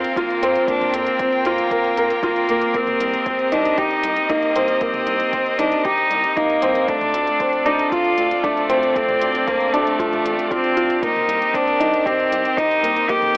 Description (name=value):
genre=piano and strings electronica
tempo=116 BPM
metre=4/4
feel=straight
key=C dorian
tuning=A4 = 440 Hz
part: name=bright cello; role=melody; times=0.0-13.4 s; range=A3 to G4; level=-20 LUFS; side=equal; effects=none
part: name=clear string quartet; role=sustained chords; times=0.0-13.4 s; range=C4 to G5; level=-27 LUFS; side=equal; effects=sidechain pumping
part: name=dark concert grand piano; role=riff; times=0.0-13.4 s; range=A3 to Bb4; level=-20 LUFS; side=equal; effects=none
part: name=round analog bass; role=bass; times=0.0-13.4 s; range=D1 to F2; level=-33 LUFS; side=equal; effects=sidechain pumping
part: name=organic electronic drum kit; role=drums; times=0.0-13.4 s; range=hi-hat, toms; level=-38 LUFS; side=equal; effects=overdrive
part: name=electronic kick drum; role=drums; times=0.2-13.2 s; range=none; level=-33 LUFS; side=equal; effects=overdrive
room=moderate concert hall reverb, RT60 2.4 s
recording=telephone sound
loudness=-16 LUFS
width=side -24 dB against mid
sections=0.0-13.4 A section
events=none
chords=0.0 Fsus4; 2.7 Cm7; 6.9 Dm7; 11.0 Cm7